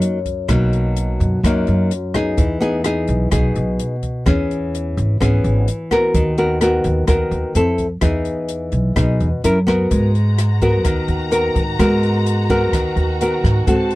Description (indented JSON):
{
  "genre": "bossa nova",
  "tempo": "127 BPM",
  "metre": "4/4",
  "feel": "straight",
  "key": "G# minor",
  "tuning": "A4 = 440 Hz",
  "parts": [
    { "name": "nylon-string guitar", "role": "accompaniment", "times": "0.0-14.0 s", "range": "F#2 to A#4", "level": "-18 LUFS", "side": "left 1 dB", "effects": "none" },
    { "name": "open jazz drum kit", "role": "drums", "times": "0.0-14.0 s", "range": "hi-hat, kick drum, rim click", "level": "-23 LUFS", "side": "equal", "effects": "none" },
    { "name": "upright bass", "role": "bass", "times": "0.5-14.0 s", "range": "G#1 to G#2", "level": "-19 LUFS", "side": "equal", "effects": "none" },
    { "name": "warm studio string section", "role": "sustained chords", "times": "9.9-14.0 s", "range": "F#4 to A#5", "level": "-27 LUFS", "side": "equal", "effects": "none" }
  ],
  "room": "little or no reverb",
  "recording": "dry, close 1970s-style studio recording",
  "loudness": "-15 LUFS",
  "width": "side -18 dB against mid",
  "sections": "0.0-9.9 A section; 9.9-14.0 B section",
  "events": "none",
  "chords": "0.0 Bmaj7; 2.4 Emaj7; 4.3 C#m7; 6.1 Bmaj7/D#; 7.6 Fmaj7; 8.0 Emaj7; 9.4 F#7; 9.9 G#m9",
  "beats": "0.02 | 0.49 0.96 1.43 1.90 | 2.37 2.84 3.31 3.79 | 4.26 4.73 5.20 5.67 | 6.14 6.61 7.08 7.55 | 8.02 8.49 8.96 9.44 | 9.91 10.38 10.85 11.32 | 11.79 12.26 12.73 13.20 | 13.67"
}